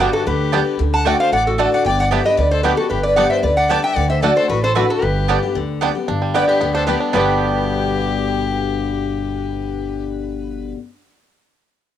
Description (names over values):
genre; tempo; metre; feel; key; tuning
bluegrass; 227 BPM; 4/4; straight; G major; A4 = 440 Hz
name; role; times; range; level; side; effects
bluegrass banjo; melody; 0.0-10.7 s; G3 to G4; -24 LUFS; right 5 dB; cassette tape
lap resonator guitar; melody; 0.0-10.7 s; F#4 to A5; -18 LUFS; equal; cassette tape
clear fiddle; second line; 0.0-10.0 s; D4 to F#5; -25 LUFS; left 7 dB; cassette tape
picked steel-string acoustic guitar; accompaniment; 0.0-10.8 s; G2 to G4; -22 LUFS; left 7 dB; cassette tape
mandolin; stabs; 0.0-10.8 s; A3 to G5; -24 LUFS; right 10 dB; cassette tape
upright bass; bass; 0.0-10.7 s; G1 to D2; -23 LUFS; right 2 dB; none
room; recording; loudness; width
moderate spring reverb, RT60 1.2 s; home recording on cassette; -15 LUFS; side -10 dB against mid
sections
0.0-6.1 A section; 6.1-7.1 B section; 7.1-9.3 C section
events
none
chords
0.0 G; 0.8 D; 1.9 G; 4.0 D; 5.0 G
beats
0.00 0.27 0.53 | 0.80 1.06 1.32 1.59 | 1.85 2.12 2.38 2.65 | 2.91 3.17 3.44 3.70 | 3.97 4.23 4.50 4.76 | 5.03 5.29 5.55 5.82 | 6.08 6.35 6.61 6.88 | 7.14 7.41 7.67 7.93 | 8.20 8.46 8.73 8.99